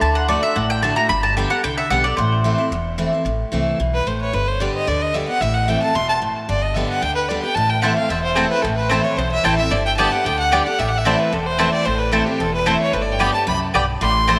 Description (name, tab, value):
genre	bluegrass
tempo	223 BPM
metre	4/4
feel	straight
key	A dorian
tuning	A4 = 441 Hz
part	picked steel-string acoustic guitar	accompaniment	0.0-14.4 s	E2 to G4	-25 LUFS	equal	none
part	mandolin	stabs	0.0-2.7, 7.8-14.4 s	B3 to B5	-23 LUFS	equal	tape echo
part	upright bass	bass	0.0-14.4 s	E1 to D2	-26 LUFS	equal	none
part	clear fiddle	second line	3.9-14.4 s	G4 to C6	-23 LUFS	equal	tape echo
room	wet plate reverb, RT60 3.9 s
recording	none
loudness	-19 LUFS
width	mono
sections	0.0-3.3 A section; 3.3-11.9 A section; 11.9-14.4 A section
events	mandolin solo 0.0-3.3; fiddle solo 3.3-14.4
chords	0.0 D; 1.1 G; 2.2 Am; 4.3 G; 5.4 Am; 6.5 G; 7.6 Am; 9.7 G; 10.8 Am; 12.9 G